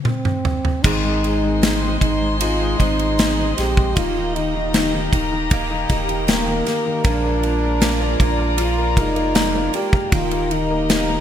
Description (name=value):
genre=pop ballad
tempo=78 BPM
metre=4/4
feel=straight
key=Ab major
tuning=A4 = 440 Hz
part: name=warm French horn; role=melody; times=0.0-11.2 s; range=Bb3 to G4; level=-23 LUFS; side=equal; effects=digital delay
part: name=modern studio drum kit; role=drums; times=0.1-11.1 s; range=crash cymbal, kick drum, ride cymbal, snare drum, toms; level=-20 LUFS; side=equal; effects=gated reverb
part: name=clear baby grand piano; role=accompaniment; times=0.8-11.2 s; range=Eb3 to F4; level=-26 LUFS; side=left 4 dB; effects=lush chorus
part: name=dark studio string section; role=sustained chords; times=0.8-11.2 s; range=Ab3 to C6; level=-27 LUFS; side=left 2 dB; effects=none
part: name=picked steel-string acoustic guitar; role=arpeggios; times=0.8-11.2 s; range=Ab2 to Ab4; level=-28 LUFS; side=right 3 dB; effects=ensemble chorus
part: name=saturated sub bass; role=bass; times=0.8-11.2 s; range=Eb1 to Bb1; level=-24 LUFS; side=equal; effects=none
room=moderate lush hall reverb, RT60 1.8 s, studio reverb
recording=bright 1980s-style digital production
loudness=-16 LUFS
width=side -10 dB against mid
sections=0.8-11.2 A section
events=drum fill 0.0-0.8; stop 0.0-0.8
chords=0.0 N.C.; 0.8 Ab; 4.0 Eb; 7.0 Bb7; 10.1 Eb